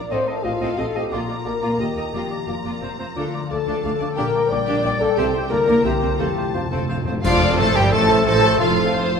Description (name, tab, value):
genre	classical, dramatic, fast romantic movement for symphony orchestra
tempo	178 BPM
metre	3/4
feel	straight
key	Bb major, F major from 3.2 s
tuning	A4 = 440 Hz
part	warm symphonic violin section	melody	0.0-9.1 s	F5 to Bb5	-27 LUFS	left 4 dB	none
part	clear oboe	second line	0.0-7.1 s	C5 to Eb5	-33 LUFS	equal	none
part	warm French horn section	sustained chords	0.0-9.1 s	F3 to D5	-23 LUFS	left 2 dB	none
part	concert harp	arpeggios	0.0-9.2 s	A2 to C6	-29 LUFS	left 6 dB	none
part	clear clarinet	second line	0.1-9.1 s	A3 to A4	-31 LUFS	equal	none
part	clear symphonic violin section	second line	0.1-9.1 s	F4 to F5	-31 LUFS	equal	none
part	mellow large flute ensemble	second line	0.1-9.0 s	A4 to G5	-31 LUFS	right 1 dB	none
part	warm symphonic viola section	accompaniment	0.1-9.2 s	Bb3 to D5	-27 LUFS	right 2 dB	none
part	clear symphonic double bass section	bass	0.1-9.1 s	F1 to Eb2	-29 LUFS	right 3 dB	none
part	dark symphonic cello section	bass	0.1-9.1 s	D2 to D3	-29 LUFS	right 2 dB	none
part	timpani	percussion	5.2-7.7 s	F2 to C3	-28 LUFS	right 1 dB	none
part	dark trombone section	sustained chords	7.2-9.1 s	F3 to A3	-26 LUFS	right 3 dB	none
part	clear trumpet	stabs	7.2-9.1 s	F4 to A4	-25 LUFS	right 2 dB	none
part	clash cymbals and concert bass drum	percussion	7.2-7.9 s	none	-28 LUFS	equal	none
room	wet scoring stage reverb, RT60 2.1 s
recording	minimal, uncompressed stereo recording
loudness	-18 LUFS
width	side -6 dB against mid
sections	0.0-7.2 A section; 7.2-9.2 B section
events	timpani fill 6.2-7.2; band accent 7.2-7.6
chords	0.1 F7/A; 1.1 Bb; 1.8 Eb; 2.1 Bb/F; 2.8 F; 3.2 Dm; 4.2 Gm/Bb; 5.2 C; 5.5 Bb/D; 5.9 C7; 6.2 F